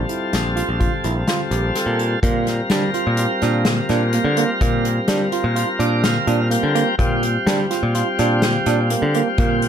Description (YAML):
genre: progressive instrumental, band music in an uneven meter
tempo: 126 BPM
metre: 5/4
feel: straight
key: Bb major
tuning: A4 = 439 Hz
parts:
  - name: tonewheel organ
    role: accompaniment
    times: 0.0-9.7 s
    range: G3 to G5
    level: -22 LUFS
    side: left 1 dB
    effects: slow rotary speaker
  - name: modern bright picked electric bass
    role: bass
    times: 0.0-9.7 s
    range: Bb1 to G3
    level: -20 LUFS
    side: equal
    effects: none
  - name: barky tine electric piano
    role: arpeggios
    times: 0.1-9.6 s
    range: Bb3 to A4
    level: -24 LUFS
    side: right 7 dB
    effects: auto-pan, ping-pong delay
  - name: unplugged drum kit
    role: drums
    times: 0.1-9.7 s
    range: hi-hat, kick drum, snare drum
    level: -22 LUFS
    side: left 1 dB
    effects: none
room: light reverb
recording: dark, warm production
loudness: -16 LUFS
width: side -8 dB against mid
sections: 0.0-2.2 A section; 2.2-9.7 B section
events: tonewheel organ fill 5.6-7.0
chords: 0.0 Bbmaj7(no3); 2.2 Bb6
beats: 0.33 0.81 1.28 1.76 | 2.23 2.71 3.18 3.66 4.13 | 4.61 5.09 5.56 6.04 6.52 | 6.99 7.47 7.95 8.43 8.90 | 9.38